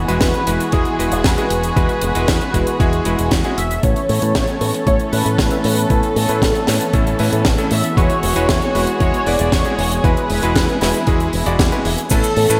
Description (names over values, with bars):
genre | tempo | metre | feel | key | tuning
italo disco | 116 BPM | 4/4 | straight | A major | A4 = 439 Hz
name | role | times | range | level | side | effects
warm chamber string section | sustained chords | 0.0-12.6 s | E3 to A4 | -24 LUFS | equal | none
fingered electric bass with an envelope filter | bass | 0.0-12.6 s | E1 to A2 | -23 LUFS | equal | none
bright electric grand piano | stabs | 0.1-12.6 s | G#3 to D5 | -26 LUFS | equal | low-pass filter
tight funk drum kit | drums | 0.1-12.6 s | cabasa, crash cymbal, hi-hat, snare drum | -24 LUFS | equal | studio reverb, gated reverb
unison lead | melody | 0.2-12.6 s | G#4 to E5 | -25 LUFS | equal | ensemble chorus, tape echo
electronic kick drum | drums | 0.2-12.2 s | none | -21 LUFS | equal | studio reverb
room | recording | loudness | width
moderate lush hall reverb, RT60 2.6 s | none | -17 LUFS | mono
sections
0.0-3.8 A section; 3.8-12.1 B section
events
filter sweep on electric grand piano 3.8-12.1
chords
0.0 Eadd9; 3.8 Aadd9; 8.0 Eadd9